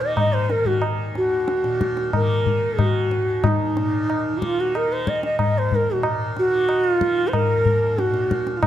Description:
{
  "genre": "indian classical, Hindustani",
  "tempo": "92 BPM",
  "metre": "4/4",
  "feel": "straight",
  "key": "unclear",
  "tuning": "A4 = 439 Hz",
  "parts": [
    { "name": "breathy mellow bansuri", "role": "melody", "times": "0.0-8.7 s", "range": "Eb4 to Eb5", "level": "-21 LUFS", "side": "right 1 dB", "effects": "none" },
    { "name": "tanpura", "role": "drone", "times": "0.0-8.7 s", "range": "Eb2 to Eb3", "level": "-30 LUFS", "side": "right 1 dB", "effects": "none" },
    { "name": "tabla", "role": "percussion", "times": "0.2-8.7 s", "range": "none", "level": "-22 LUFS", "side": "left 2 dB", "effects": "none" }
  ],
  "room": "moderate recital hall reverb, RT60 1.7 s",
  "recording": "close, detailed microphones",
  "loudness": "-18 LUFS",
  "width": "side -11 dB against mid",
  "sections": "0.0-8.7 A section",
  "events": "none",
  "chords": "none",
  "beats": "0.17 | 0.83 1.48 2.14 2.79 | 3.44 4.10 4.75 5.40 | 6.04 6.69 7.34 7.98 | 8.62"
}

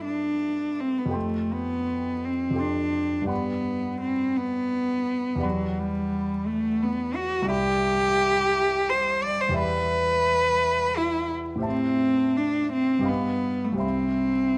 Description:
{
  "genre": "classical, impressionist duo for cello and grand piano",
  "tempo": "85 BPM",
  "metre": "3/4",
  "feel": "uneven beats, rubato",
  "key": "C major from 7.5 s",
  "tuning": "A4 = 443 Hz",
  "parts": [
    { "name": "rich cello", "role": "melody", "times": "0.0-14.6 s", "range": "F#3 to D5", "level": "-26 LUFS", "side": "equal", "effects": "none" },
    { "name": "warm concert grand piano", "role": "accompaniment", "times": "0.0-14.6 s", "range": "C2 to C6", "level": "-33 LUFS", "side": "equal", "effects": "none" }
  ],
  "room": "light reverb",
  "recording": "close, detailed microphones, vinyl crackle",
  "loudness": "-25 LUFS",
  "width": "mono",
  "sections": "0.0-14.6 A section",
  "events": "none",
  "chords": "0.0 G69; 1.2 F69; 3.3 Gmaj7; 5.4 Em9; 7.5 Cmaj9; 9.6 Em7; 11.7 Am7; 13.1 Gaug7; 13.8 Cmaj7",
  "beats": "0.42 | 1.15 1.88 2.59 | 3.30 4.01 4.72 | 5.44 6.14 6.83 | 7.52 8.21 8.89 | 9.58 10.27 10.96 | 11.65 12.36 13.08 | 13.83"
}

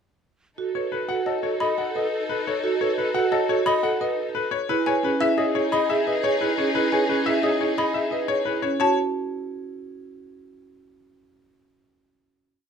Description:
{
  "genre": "classical, minimalist pattern music",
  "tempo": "175 BPM",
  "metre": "6/4",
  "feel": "straight",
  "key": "B mixolydian",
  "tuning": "A4 = 440 Hz",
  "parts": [
    { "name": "mellow hollow alto flute", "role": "second line", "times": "0.6-8.6 s", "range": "G#4 to A4", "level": "-30 LUFS", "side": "right 3 dB", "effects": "none" },
    { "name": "rich symphonic violin section", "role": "sustained chords", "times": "0.6-8.6 s", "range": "D#4 to A4", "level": "-31 LUFS", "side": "left 3 dB", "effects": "none" },
    { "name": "marimba with medium mallets", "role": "arpeggios", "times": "0.6-9.0 s", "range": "C#4 to C#5", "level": "-26 LUFS", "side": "right 6 dB", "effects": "none" },
    { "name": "bright grand piano", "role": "melody", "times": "0.8-9.0 s", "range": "G#4 to F#5", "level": "-25 LUFS", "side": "left 6 dB", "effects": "none" },
    { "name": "xylophone with soft rubber mallets", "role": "arpeggios", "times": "1.3-9.0 s", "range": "D#5 to B5", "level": "-27 LUFS", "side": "left 2 dB", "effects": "none" }
  ],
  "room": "light reverb",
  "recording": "close, detailed microphones",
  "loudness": "-21 LUFS",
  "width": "side -7 dB against mid",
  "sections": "0.6-8.8 A section; 8.8-10.9 final chord",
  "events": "none",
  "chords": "0.6 B7; 4.7 Emaj7; 8.8 F#m",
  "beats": "| 0.58 0.92 1.27 1.61 1.95 2.29 | 2.64 2.98 3.32 3.67 4.01 4.35 | 4.70 5.04 5.38 5.72 6.07 6.41 | 6.75 7.09 7.44 7.78 8.12 8.47 | 8.81"
}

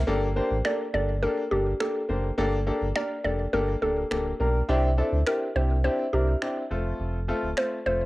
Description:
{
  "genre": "dance-pop",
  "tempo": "104 BPM",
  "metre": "4/4",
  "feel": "straight",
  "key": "G dorian",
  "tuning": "A4 = 437 Hz",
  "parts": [
    { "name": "sub bass with octave", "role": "bass", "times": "0.0-8.1 s", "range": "D1 to D2", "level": "-26 LUFS", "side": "equal", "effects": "none" },
    { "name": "clear grand piano", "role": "accompaniment", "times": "0.1-8.1 s", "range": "A3 to C5", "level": "-28 LUFS", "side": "left 1 dB", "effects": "cassette tape" },
    { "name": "electronic finger snaps", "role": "drums", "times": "0.6-7.7 s", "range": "none", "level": "-36 LUFS", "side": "right 1 dB", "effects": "cassette tape" },
    { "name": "mallet-like synth pluck", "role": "melody", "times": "0.7-8.1 s", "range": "G4 to D5", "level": "-28 LUFS", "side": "equal", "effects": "chorus, cassette tape, tape echo" }
  ],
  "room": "moderate spring reverb, RT60 1.3 s",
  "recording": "home recording on cassette",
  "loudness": "-24 LUFS",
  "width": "side -19 dB against mid",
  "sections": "0.1-8.1 A section",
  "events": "none",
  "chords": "0.1 Gmadd9; 4.7 Cadd9; 6.7 F",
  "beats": "| 0.07 0.65 1.23 1.80 | 2.38 2.96 3.54 4.11 | 4.69 5.27 5.84 6.42 | 7.00 7.57"
}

